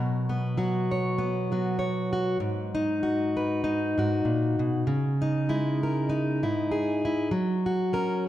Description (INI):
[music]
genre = folk, solo fingerstyle acoustic guitar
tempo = 98 BPM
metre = 4/4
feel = swing 55% on 8ths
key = B major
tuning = A4 = 440 Hz
[part]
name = fingerpicked plugged-in steel-string acoustic guitar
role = solo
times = 0.0-8.3 s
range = G#2 to C#5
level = -24 LUFS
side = equal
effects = none
[sound]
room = wet scoring stage reverb, RT60 1.9 s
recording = dark, warm production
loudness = -24 LUFS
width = side -13 dB against mid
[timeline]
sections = 0.0-8.3 A section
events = none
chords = 0.0 Bsus2; 2.4 G#m7; 4.9 C#madd9; 7.3 F#